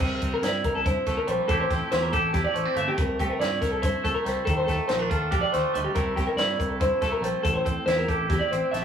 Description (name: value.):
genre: math rock and midwest emo.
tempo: 283 BPM (eighths).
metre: 7/8.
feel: straight.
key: unclear.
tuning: A4 = 439 Hz.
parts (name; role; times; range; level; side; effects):
twangy electric guitar; accompaniment; 0.0-8.8 s; A2 to G4; -29 LUFS; right 3 dB; none.
twelve-string electric guitar; arpeggios; 0.0-8.8 s; G4 to E5; -26 LUFS; left 1 dB; none.
growling fingered electric bass; bass; 0.0-8.8 s; G1 to G2; -31 LUFS; equal; overdrive.
compact cocktail drum kit; drums; 0.0-8.8 s; crash cymbal, hi-hat, kick drum, snare drum; -29 LUFS; equal; none.
room: moderate studio reverb, RT60 0.6 s.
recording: rough rehearsal-room recording, warm saturation, small room ambience.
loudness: -22 LUFS.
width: side -8 dB against mid.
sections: 0.0-8.8 A section.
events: none.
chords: 0.0 C13; 1.5 Am7; 3.0 C13; 4.5 Ebmaj9#11; 6.0 C13; 7.4 Am7.